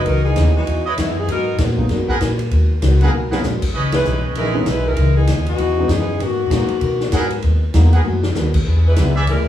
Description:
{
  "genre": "jazz, big band swing",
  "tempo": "195 BPM",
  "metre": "4/4",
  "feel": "swing 60% on 8ths",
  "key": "G# minor",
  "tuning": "A4 = 440 Hz",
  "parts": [
    { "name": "mellow saxophone section", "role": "melody", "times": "0.0-1.6, 3.9-9.5 s", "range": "D#3 to B4", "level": "-21 LUFS", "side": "left 2 dB", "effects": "none" },
    { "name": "upright bass", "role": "bass", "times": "0.0-9.5 s", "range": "A#1 to B2", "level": "-16 LUFS", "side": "equal", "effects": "none" },
    { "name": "picked plugged-in steel-string acoustic guitar", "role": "accompaniment", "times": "0.1-9.5 s", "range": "C#3 to A#4", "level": "-27 LUFS", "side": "left 2 dB", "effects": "none" },
    { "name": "swinging big-band drum kit", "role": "drums", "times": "0.1-9.4 s", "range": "crash cymbal, hi-hat, kick drum, ride cymbal, snare drum, toms", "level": "-25 LUFS", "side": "left 1 dB", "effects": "none" },
    { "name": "warm baby grand piano", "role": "accompaniment", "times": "0.4-9.1 s", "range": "E3 to E4", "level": "-24 LUFS", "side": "right 2 dB", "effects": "none" },
    { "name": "clear trumpet section", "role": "stabs", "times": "0.9-4.6, 7.1-9.2 s", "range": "C#4 to F#5", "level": "-24 LUFS", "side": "right 2 dB", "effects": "none" }
  ],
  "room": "wet club reverb, RT60 0.6 s",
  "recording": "heard from further back in the room, small room ambience",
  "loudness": "-14 LUFS",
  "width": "side -11 dB against mid",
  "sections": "0.0-9.5 A section",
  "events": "drum fill 3.1-3.4, 8.0-8.4; band accent 3.9",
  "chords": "0.1 C#m9; 1.3 G#m9; 3.7 C#m9; 6.2 G#m9; 8.7 E7"
}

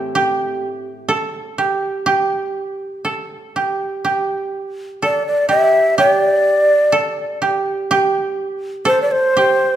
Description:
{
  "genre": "japanese traditional, Japanese chamber music",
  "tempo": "62 BPM",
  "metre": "2/4",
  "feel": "rubato",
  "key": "unclear",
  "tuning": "A4 = 439 Hz",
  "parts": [
    { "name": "koto", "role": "second line", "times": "0.0-9.8 s", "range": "G4 to A4", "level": "-19 LUFS", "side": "right 3 dB", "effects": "none" },
    { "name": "koto", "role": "accompaniment", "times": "0.0-1.1 s", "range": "A2 to E4", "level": "-32 LUFS", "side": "left 4 dB", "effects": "none" },
    { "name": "breathy mellow shakuhachi", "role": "melody", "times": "5.0-9.8 s", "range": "C5 to E5", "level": "-14 LUFS", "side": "equal", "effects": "none" }
  ],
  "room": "moderate recital hall reverb, RT60 1.8 s",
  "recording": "minimal, uncompressed stereo recording",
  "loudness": "-15 LUFS",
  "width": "side -11 dB against mid",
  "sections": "0.0-9.8 A section",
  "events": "none",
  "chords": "none"
}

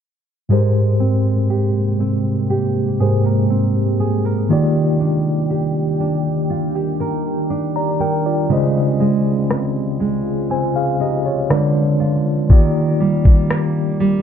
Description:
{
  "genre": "contemporary R&B",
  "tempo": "60 BPM",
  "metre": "4/4",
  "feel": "straight",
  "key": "unclear",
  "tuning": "A4 = 439 Hz",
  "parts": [
    { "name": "mellow tine electric piano", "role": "accompaniment", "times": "0.5-14.2 s", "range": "Ab2 to Bb5", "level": "-18 LUFS", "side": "left 1 dB", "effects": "medium stereo tremolo" },
    { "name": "deep dark ambient pad", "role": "sustained chords", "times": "1.7-14.2 s", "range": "C3 to G4", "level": "-23 LUFS", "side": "equal", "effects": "chorus, built-in reverb, sidechain pumping" },
    { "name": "nylon-string guitar", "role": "arpeggios", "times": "0.5-14.2 s", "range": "Db3 to Bb4", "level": "-22 LUFS", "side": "right 4 dB", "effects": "ping-pong delay" },
    { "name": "smooth R&B drum kit", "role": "drums", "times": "9.5-13.7 s", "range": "kick drum, rim click", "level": "-12 LUFS", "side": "equal", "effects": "none" }
  ],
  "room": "light reverb",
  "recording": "low-pass filter",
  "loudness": "-15 LUFS",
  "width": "side -8 dB against mid",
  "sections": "0.5-14.2 A section",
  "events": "filter sweep 0.5-14.2",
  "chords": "0.5 Abmaj9; 4.5 Ebmaj7; 8.5 Dbmaj7; 11.5 Ddim7; 12.5 Ebmaj7"
}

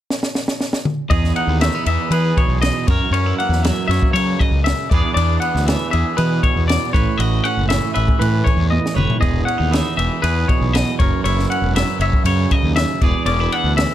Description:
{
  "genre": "math rock and midwest emo",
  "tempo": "118 BPM",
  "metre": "4/4",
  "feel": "straight",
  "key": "E major",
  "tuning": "A4 = 439 Hz",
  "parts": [
    { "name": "compact cocktail drum kit", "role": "drums", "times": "0.1-13.9 s", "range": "kick drum, ride cymbal, snare drum, toms", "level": "-20 LUFS", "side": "equal", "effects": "none" },
    { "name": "twangy electric guitar", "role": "accompaniment", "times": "1.1-13.9 s", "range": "E2 to C#5", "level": "-22 LUFS", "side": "right 9 dB", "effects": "warbly pitch drift" },
    { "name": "twangy electric guitar", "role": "arpeggios", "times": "1.1-13.9 s", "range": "B4 to F#5", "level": "-21 LUFS", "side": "left 5 dB", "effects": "none" },
    { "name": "fuzz fingered electric bass", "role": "bass", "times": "1.1-13.8 s", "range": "E1 to F#3", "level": "-19 LUFS", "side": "equal", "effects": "overdrive" }
  ],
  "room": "little or no reverb",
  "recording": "none",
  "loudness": "-15 LUFS",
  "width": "side -12 dB against mid",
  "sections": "0.0-1.1 A section; 1.1-13.9 B section",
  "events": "drum fill 0.1-1.1, 8.7-9.2",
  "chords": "0.0 N.C.; 1.1 Emaj7; 2.9 F#7; 4.9 E7; 6.9 A69; 9.2 Emaj7; 11.0 F#7; 13.0 E7"
}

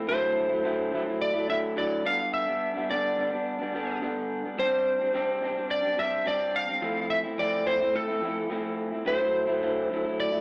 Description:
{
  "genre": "indie pop",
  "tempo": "107 BPM",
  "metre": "4/4",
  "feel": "straight",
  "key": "C major",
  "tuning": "A4 = 440 Hz",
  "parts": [
    { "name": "electric guitar through a small old amp", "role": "accompaniment", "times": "0.0-10.4 s", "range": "G2 to E4", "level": "-33 LUFS", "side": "equal", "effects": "warbly pitch drift" },
    { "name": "electric slide guitar", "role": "melody", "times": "0.1-10.4 s", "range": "A4 to F5", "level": "-29 LUFS", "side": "equal", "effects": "none" }
  ],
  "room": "moderate large studio reverb, RT60 1.1 s",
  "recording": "none",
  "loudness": "-28 LUFS",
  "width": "mono",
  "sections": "0.0-10.4 A section",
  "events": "none",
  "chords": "0.1 Dadd9; 2.0 G; 4.6 Csus2; 6.8 Fmaj7; 9.1 Dadd9"
}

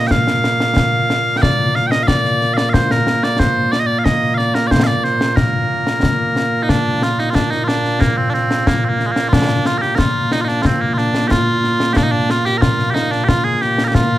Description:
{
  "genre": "scottish traditional, Scottish pipe music",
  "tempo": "91 BPM",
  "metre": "2/4",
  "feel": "straight",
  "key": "Bb major",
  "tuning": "A4 = 440 Hz",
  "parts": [
    { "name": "loud bright bagpipes", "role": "melody", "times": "0.0-14.2 s", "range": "Bb2 to G5", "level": "-16 LUFS", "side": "right 1 dB", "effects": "none" },
    { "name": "concert snare drum and concert bass drum", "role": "drums", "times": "0.1-14.1 s", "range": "none", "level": "-18 LUFS", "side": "left 1 dB", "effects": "none" }
  ],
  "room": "light reverb",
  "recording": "close, detailed microphones",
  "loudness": "-14 LUFS",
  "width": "side -14 dB against mid",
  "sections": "0.0-6.7 A section; 6.7-14.2 B section",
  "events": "none",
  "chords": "none"
}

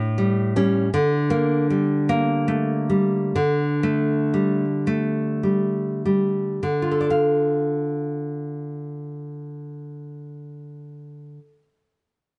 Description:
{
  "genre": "romantic piece for solo classical guitar",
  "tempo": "31-55 BPM (dotted quarters)",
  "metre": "6/8",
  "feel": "rubato",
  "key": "D minor",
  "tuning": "A4 = 440 Hz",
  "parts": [
    { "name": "nylon-string guitar", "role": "solo", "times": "0.0-11.6 s", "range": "A2 to F5", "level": "-23 LUFS", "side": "equal", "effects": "none" }
  ],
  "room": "light reverb",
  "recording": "dark, warm production, nothing above 10.8 kHz",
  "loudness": "-22 LUFS",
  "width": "mono",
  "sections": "0.0-6.6 A section; 6.6-9.9 B section",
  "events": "slowing down 0.0-6.6",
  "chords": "0.0 A7; 0.9 Gm/D; 3.4 Dsus4; 6.6 Dm"
}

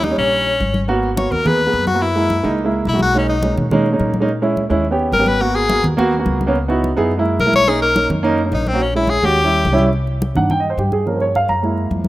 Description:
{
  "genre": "Afro-Cuban jazz",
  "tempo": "212 BPM",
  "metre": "4/4",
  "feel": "straight",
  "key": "G# minor",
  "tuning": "A4 = 440 Hz",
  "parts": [
    { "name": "edgy tenor saxophone", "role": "melody", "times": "0.0-9.9 s", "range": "B#3 to C#5", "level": "-18 LUFS", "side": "left 2 dB", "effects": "none" },
    { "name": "dark grand piano", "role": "accompaniment", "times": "0.0-12.1 s", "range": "Eb3 to Bb5", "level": "-18 LUFS", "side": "right 2 dB", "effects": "none" },
    { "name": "upright bass", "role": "bass", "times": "0.0-12.1 s", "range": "Ab1 to B2", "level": "-22 LUFS", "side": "equal", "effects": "none" },
    { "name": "congas", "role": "percussion", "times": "0.0-12.1 s", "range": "none", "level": "-24 LUFS", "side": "left 1 dB", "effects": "none" }
  ],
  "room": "light reverb, studio ambience",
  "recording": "rough home demo mix",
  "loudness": "-14 LUFS",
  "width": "side -16 dB against mid",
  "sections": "0.9-9.9 A section; 9.9-12.1 A section",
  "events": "tenor saxophone solo 0.0-9.9; grand piano solo 9.9-12.1",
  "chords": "0.0 Eb7; 0.9 G#m7; 2.0 F#7; 3.2 Bmaj13; 4.3 A#m7b5; 4.9 D#7b13; 5.4 G#m9; 6.6 C#m11; 7.1 F#9; 7.7 Bmaj7; 8.8 A#m7b5; 9.4 D#7b9; 9.9 Cm9; 11.1 Gm7b5"
}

